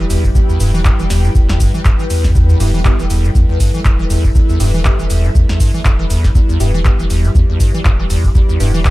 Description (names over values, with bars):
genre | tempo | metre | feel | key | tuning
acid house | 120 BPM | 4/4 | swing 57% on 16ths | E minor | A4 = 437 Hz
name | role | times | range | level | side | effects
dark analog pad | sustained chords | 0.0-8.9 s | G3 to A4 | -25 LUFS | left 1 dB | wide subtle chorus, sidechain pumping
liquid acid bass | riff | 0.0-8.9 s | E2 to E3 | -16 LUFS | equal | tube saturation, lush chorus, sidechain pumping, digital delay
saturated sub bass | bass | 0.0-8.9 s | E1 to E2 | -17 LUFS | equal | sidechain pumping
ethereal airy pad | texture | 0.0-8.9 s | E4 to G5 | -27 LUFS | left 1 dB | ensemble chorus, built-in reverb, phaser, sidechain pumping
electro analog drum machine | drums | 0.1-8.9 s | cabasa, handclaps, hi-hat, snare drum | -24 LUFS | equal | none
electronic kick drum | drums | 0.2-8.9 s | none | -13 LUFS | equal | none
filtered dub chord stab | stabs | 2.6-8.9 s | B3 to G4 | -26 LUFS | equal | phaser, wide subtle chorus, digital delay
room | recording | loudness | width
digital ambience | none | -10 LUFS | side -18 dB against mid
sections
0.0-8.9 A section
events
none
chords
0.0 Em